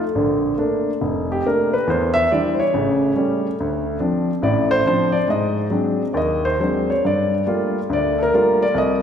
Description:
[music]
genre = solo jazz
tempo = 140 BPM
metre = 4/4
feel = swing 67% on 8ths, rubato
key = Bb major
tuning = A4 = 441 Hz
[part]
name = warm grand piano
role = solo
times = 0.0-9.0 s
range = F1 to E5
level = -17 LUFS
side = equal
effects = none
[sound]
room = wet scoring stage reverb, RT60 2.1 s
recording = recorded in a church or concert hall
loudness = -17 LUFS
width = side -8 dB against mid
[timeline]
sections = 0.2-9.0 A section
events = grand piano solo 0.2-9.0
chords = 0.2 Bbmaj7; 1.9 Em7; 2.7 A7; 3.6 Dm7; 5.3 Ab7#11; 7.0 Gm9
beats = | 0.16 0.59 1.03 1.46 | 1.89 2.31 2.74 3.16 | 3.58 4.00 4.42 4.85 | 5.28 5.71 6.14 6.59 | 7.03 7.47 7.91 8.33 | 8.76

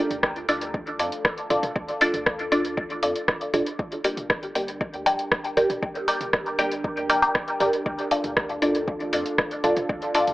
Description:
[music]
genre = dub techno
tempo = 118 BPM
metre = 4/4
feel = straight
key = D minor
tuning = A4 = 441 Hz
[part]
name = deep dark ambient pad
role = sustained chords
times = 0.0-10.3 s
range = D4 to Bb4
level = -33 LUFS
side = equal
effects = chorus, built-in reverb, sidechain pumping
[part]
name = filtered dub chord stab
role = stabs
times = 0.0-10.3 s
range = D4 to G5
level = -24 LUFS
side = equal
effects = phaser, sidechain pumping, dub echo
[part]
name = soft dub sub bass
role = bass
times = 0.1-10.3 s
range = F1 to F2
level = -46 LUFS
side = equal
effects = sidechain pumping
[part]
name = deep house drum kit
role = drums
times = 0.1-10.3 s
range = hi-hat, rim click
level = -26 LUFS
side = equal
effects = overdrive, dub echo
[part]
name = electronic toms and woodblock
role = percussion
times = 0.1-10.3 s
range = none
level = -32 LUFS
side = left 1 dB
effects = sidechain pumping on perc, sidechain pumping on toms, dub echo
[part]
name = electronic kick drum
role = drums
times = 0.2-10.0 s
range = none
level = -32 LUFS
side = equal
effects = overdrive
[sound]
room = moderate digital room reverb, RT60 1.0 s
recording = AM radio sound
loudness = -22 LUFS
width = side -18 dB against mid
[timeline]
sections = 0.0-10.3 A section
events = none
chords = 0.0 Dm; 3.8 Gm; 7.9 Dm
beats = 0.23 0.74 1.25 | 1.76 2.27 2.77 3.28 | 3.79 4.30 4.81 5.32 | 5.83 6.33 6.84 7.35 | 7.86 8.37 8.88 9.38 | 9.89

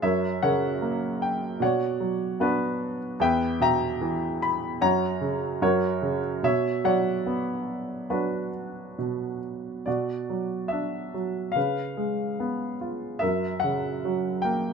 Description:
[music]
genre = classical, lyrical solo piano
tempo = 66-77 BPM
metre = 4/4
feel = rubato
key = B harmonic minor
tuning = A4 = 440 Hz
[part]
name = clear baby grand piano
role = solo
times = 0.0-14.7 s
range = E2 to B5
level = -24 LUFS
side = right 1 dB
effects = none
[sound]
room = moderate studio reverb, RT60 0.6 s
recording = minimal, uncompressed stereo recording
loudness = -24 LUFS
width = side -6 dB against mid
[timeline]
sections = 0.0-9.9 A section; 9.9-14.7 A section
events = none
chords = 0.0 F#; 1.6 Bmadd9; 3.2 Em; 4.8 F#5; 6.4 Bmadd9; 9.9 Bm; 11.6 C#7; 13.2 F#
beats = | 0.03 0.83 1.61 2.40 | 3.20 4.01 4.81 5.62 | 6.43 7.25 8.10 8.98 | 9.87 10.73 11.56 12.39 | 13.22 14.04

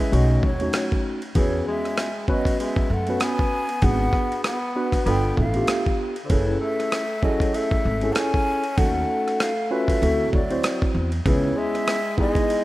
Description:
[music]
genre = hip hop, jazz-hop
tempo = 97 BPM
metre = 4/4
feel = swing 58% on 16ths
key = unclear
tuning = A4 = 440 Hz
[part]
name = breathy mellow concert flute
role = melody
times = 0.0-12.6 s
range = B#4 to A5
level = -28 LUFS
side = equal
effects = slapback echo
[part]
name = growling tenor saxophone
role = second line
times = 0.0-12.6 s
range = D3 to C#4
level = -29 LUFS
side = left 1 dB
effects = none
[part]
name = tine electric piano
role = accompaniment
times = 0.0-12.6 s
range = G#3 to C5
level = -26 LUFS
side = equal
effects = medium stereo tremolo
[part]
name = upright bass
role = bass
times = 0.1-11.5 s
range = F#1 to F#2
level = -23 LUFS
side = equal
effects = none
[part]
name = dusty soul sampler-style drum kit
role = drums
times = 0.1-12.6 s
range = hi-hat, kick drum, ride cymbal, rim click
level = -25 LUFS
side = equal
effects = overdrive
[sound]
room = light reverb, small room ambience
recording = rough home demo mix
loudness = -20 LUFS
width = side -17 dB against mid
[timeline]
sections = 0.0-12.6 A section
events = none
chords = 0.1 B7; 1.4 E69; 3.8 G#m7b5; 5.1 G9; 6.3 F#m7 (rootless); 8.8 D#m7b5; 10.0 D9; 11.2 C#m7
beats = 0.12 0.73 | 1.35 1.97 2.59 3.21 | 3.83 4.45 5.06 5.68 | 6.30 6.92 7.54 8.16 | 8.78 9.39 10.01 10.63 | 11.25 11.87 12.49

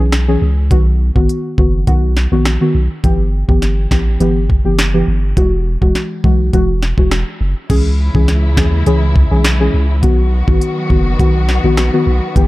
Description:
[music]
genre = dancehall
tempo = 103 BPM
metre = 4/4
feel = straight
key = B major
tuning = A4 = 442 Hz
[part]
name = deep mellow chord stab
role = accompaniment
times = 0.0-12.5 s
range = D#3 to G#4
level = -16 LUFS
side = left 1 dB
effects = chorus
[part]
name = punchy sub bass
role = bass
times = 0.0-12.5 s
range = E1 to D#2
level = -14 LUFS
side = equal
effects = none
[part]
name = afro-pop drum kit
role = drums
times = 0.1-12.5 s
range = crash cymbal, hi-hat, kick drum, rim click, snare drum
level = -15 LUFS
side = equal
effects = none
[part]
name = warm studio string section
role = sustained chords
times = 7.7-12.5 s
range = C#3 to F#4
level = -22 LUFS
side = equal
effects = sidechain pumping
[sound]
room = digital ambience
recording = dark, warm production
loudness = -11 LUFS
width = side -18 dB against mid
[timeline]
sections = 0.0-7.7 A section; 7.7-12.5 B section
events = none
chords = 0.0 C#m; 0.7 B; 3.0 G6; 5.4 Eadd9; 7.7 C#m; 10.0 B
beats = 0.13 | 0.71 1.29 1.87 2.46 | 3.04 3.62 4.20 4.79 | 5.37 5.95 6.53 7.12 | 7.70 8.28 8.86 9.45 | 10.03 10.61 11.19 11.78 | 12.36

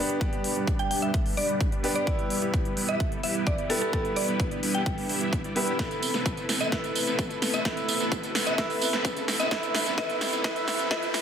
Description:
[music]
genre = EDM, festival progressive house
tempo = 129 BPM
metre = 4/4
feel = straight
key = unclear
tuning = A4 = 440 Hz
[part]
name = mallet-like synth pluck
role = melody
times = 0.0-11.0 s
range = A4 to G5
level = -31 LUFS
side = equal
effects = chorus, digital delay
[part]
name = bright grand piano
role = accompaniment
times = 0.0-11.2 s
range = B3 to B4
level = -32 LUFS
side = equal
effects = vintage 12-bit sampler grit, sidechain pumping, digital delay
[part]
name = lush unison pad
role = sustained chords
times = 0.0-11.2 s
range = G3 to B4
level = -37 LUFS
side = equal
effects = chorus, phaser, sidechain pumping
[part]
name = dense compressed supersaw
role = riff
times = 0.0-11.2 s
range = G3 to E5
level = -32 LUFS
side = right 1 dB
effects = sidechain pumping, low-pass filter, digital delay
[part]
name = big-room dance drum kit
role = drums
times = 0.1-11.2 s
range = hi-hat, snare drum, tambourine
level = -30 LUFS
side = right 1 dB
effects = none
[part]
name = electronic kick drum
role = drums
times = 0.2-11.0 s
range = none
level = -29 LUFS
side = equal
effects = none
[part]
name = riser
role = sound effects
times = 7.3-11.2 s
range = none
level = -40 LUFS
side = equal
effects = none
[sound]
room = wet digital room reverb, RT60 1.1 s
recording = dense, heavily limited modern master, high-pass filter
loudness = -24 LUFS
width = side -8 dB against mid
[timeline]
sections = 0.0-11.2 A section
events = build-up 0.0-11.2; filter sweep on supersaw synth 0.0-11.2; filter sweep on analog synth pad 0.0-11.2; filter sweep 0.0-11.2; drum fill 5.8-11.2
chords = 0.0 G; 2.1 Em; 5.8 Amadd9; 9.5 C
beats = | 0.21 0.68 1.14 1.61 | 2.07 2.54 3.00 3.47 | 3.93 4.40 4.86 5.33 | 5.79 6.26 6.72 7.19 | 7.65 8.12 8.58 9.05 | 9.51 9.98 10.44 10.91

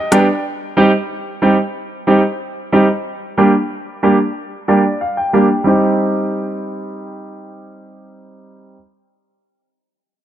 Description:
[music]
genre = dancehall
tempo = 92 BPM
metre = 4/4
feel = straight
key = C minor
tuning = A4 = 443 Hz
[part]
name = warm grand piano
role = accompaniment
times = 0.0-8.8 s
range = G3 to G5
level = -14 LUFS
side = right 1 dB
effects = low-pass filter
[sound]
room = light reverb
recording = dark, warm production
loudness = -13 LUFS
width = side -11 dB against mid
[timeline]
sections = 0.0-5.7 A section; 5.7-8.3 B section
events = grand piano fill 0.0-0.4, 4.4-5.7; filter sweep on grand piano 0.0-5.7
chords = 0.4 Cm; 3.1 Gm; 5.7 Cm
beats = | 0.45 1.10 1.75 2.40 | 3.05 3.71 4.36 5.01 | 5.66 6.32 6.97 7.62

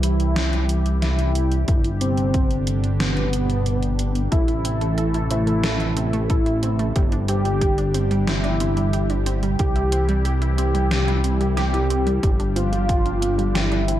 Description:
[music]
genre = synthwave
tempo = 91 BPM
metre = 4/4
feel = straight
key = unclear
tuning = A4 = 440 Hz
[part]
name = wide unison lead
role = melody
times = 0.0-14.0 s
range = B3 to G4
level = -25 LUFS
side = equal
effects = digital delay
[part]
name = phased analog pad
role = sustained chords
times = 0.0-14.0 s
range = C3 to A4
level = -28 LUFS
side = equal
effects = phaser, chorus, sidechain pumping
[part]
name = chorused synth bass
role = bass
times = 0.0-14.0 s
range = G1 to C2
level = -22 LUFS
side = equal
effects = sidechain pumping
[part]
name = gated 80s digital drum machine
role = drums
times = 0.0-14.0 s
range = hi-hat, snare drum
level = -28 LUFS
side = equal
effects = gated reverb, gated reverb snare, overdrive
[part]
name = electronic kick drum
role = drums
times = 1.7-13.0 s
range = none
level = -20 LUFS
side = equal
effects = none
[part]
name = analog pluck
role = arpeggios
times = 4.3-14.0 s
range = G3 to A4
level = -29 LUFS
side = right 3 dB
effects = chorus, digital delay
[sound]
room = light reverb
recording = dark, warm production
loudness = -18 LUFS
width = side -12 dB against mid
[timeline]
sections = 0.0-14.0 A section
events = none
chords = 0.0 C; 1.7 Gsus4; 4.3 Am; 7.0 Gsus4; 9.6 C; 12.2 Gsus4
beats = 0.36 1.02 | 1.68 2.34 3.00 3.66 | 4.32 4.98 5.64 6.30 | 6.96 7.62 8.28 8.93 | 9.59 10.25 10.91 11.57 | 12.23 12.89 13.55

